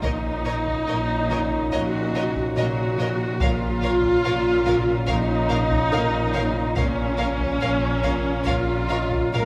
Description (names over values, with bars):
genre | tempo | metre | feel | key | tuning
cinematic, suspense film score | 71 BPM | 4/4 | straight | Bb minor | A4 = 443 Hz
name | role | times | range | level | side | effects
rich studio violin section | melody | 0.0-9.4 s | Eb5 to F5 | -35 LUFS | equal | none
clear studio violin section | second line | 0.0-9.4 s | Bb4 to Db5 | -37 LUFS | equal | none
rich studio viola section | accompaniment | 0.0-9.5 s | Db4 to Bb4 | -26 LUFS | equal | none
glass harmonica | sustained chords | 0.0-9.5 s | Eb4 to Bb5 | -37 LUFS | equal | none
mellow French horn section | sustained chords | 0.0-9.5 s | Db4 to F4 | -33 LUFS | equal | none
concert harp | riff | 0.0-9.5 s | Bb2 to Bb3 | -32 LUFS | equal | none
rich studio cello section | bass | 0.0-9.5 s | Bb2 | -33 LUFS | equal | none
rich studio double bass section | bass | 0.0-9.5 s | Bb1 | -32 LUFS | equal | none
taiko ensemble | drums | 0.0-9.5 s | none | -33 LUFS | equal | none
warm grand piano | texture | 0.0-9.5 s | Bb4 to Eb5 | -36 LUFS | equal | none
room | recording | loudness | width
moderate scoring stage reverb, RT60 2.0 s | none | -23 LUFS | mono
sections
0.0-9.5 A section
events
none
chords
0.0 Ebm7/Bb; 3.4 Bbm